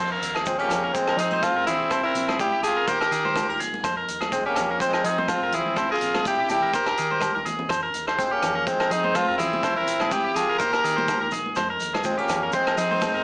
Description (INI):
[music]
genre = highlife guitar band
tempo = 124 BPM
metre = 4/4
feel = swing 54% on 16ths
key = F minor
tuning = A4 = 444 Hz
[part]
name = nylon-string guitar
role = accompaniment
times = 0.0-13.2 s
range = F2 to Ab4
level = -36 LUFS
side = equal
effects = none
[part]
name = electric guitar at the edge of break-up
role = arpeggios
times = 0.0-13.2 s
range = G4 to C5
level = -26 LUFS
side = equal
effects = slapback echo
[part]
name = hollow-body short-scale fingered electric bass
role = bass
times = 0.0-13.2 s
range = Bb1 to F3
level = -38 LUFS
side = equal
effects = none
[part]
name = vintage drum kit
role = drums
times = 0.2-13.1 s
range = hi-hat, kick drum, rim click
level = -32 LUFS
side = equal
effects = none
[part]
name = maracas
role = percussion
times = 0.2-13.1 s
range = none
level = -42 LUFS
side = left 1 dB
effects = none
[part]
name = agogo bells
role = percussion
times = 0.3-13.1 s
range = none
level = -32 LUFS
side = equal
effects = none
[part]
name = raspy tenor saxophone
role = melody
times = 0.5-13.2 s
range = C4 to Bb4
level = -24 LUFS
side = equal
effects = slapback echo
[part]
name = growling trumpet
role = second line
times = 0.5-13.2 s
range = Ab3 to G4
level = -30 LUFS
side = equal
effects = none
[part]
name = congas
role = percussion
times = 0.7-13.1 s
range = none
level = -36 LUFS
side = equal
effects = none
[sound]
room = moderate studio reverb, RT60 0.7 s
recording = small speaker sound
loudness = -21 LUFS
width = side -33 dB against mid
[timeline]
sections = 0.0-13.2 A section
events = drum fill 7.1-7.7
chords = 0.0 Fm; 1.9 C5; 2.9 Eb; 3.8 Fm; 5.8 C; 6.7 Eb; 7.7 Fm; 9.6 C; 10.6 Eb; 11.6 Fm